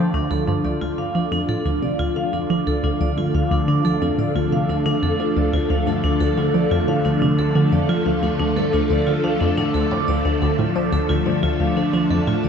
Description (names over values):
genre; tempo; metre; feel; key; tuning
ambient, sequencer-driven space music; 89 BPM; 4/4; straight; D minor; A4 = 440 Hz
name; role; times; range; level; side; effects
phased string machine; sustained chords; 0.0-12.5 s; D3 to A4; -21 LUFS; left 1 dB; ensemble chorus, phaser
vibraphone with hard mallets; arpeggios; 0.0-12.5 s; D4 to D6; -24 LUFS; right 2 dB; auto-pan, tape echo
analog pluck; riff; 0.0-12.5 s; D2 to F3; -22 LUFS; equal; chorus, tape echo
bubbling stepped-filter texture; texture; 0.0-12.5 s; D4 to E6; -39 LUFS; equal; none
room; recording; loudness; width
wet cathedral reverb, RT60 5.5 s; in a vast, echoing space, nothing above 7.9 kHz; -18 LUFS; side -7 dB against mid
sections
0.1-12.5 A section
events
none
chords
0.1 Dm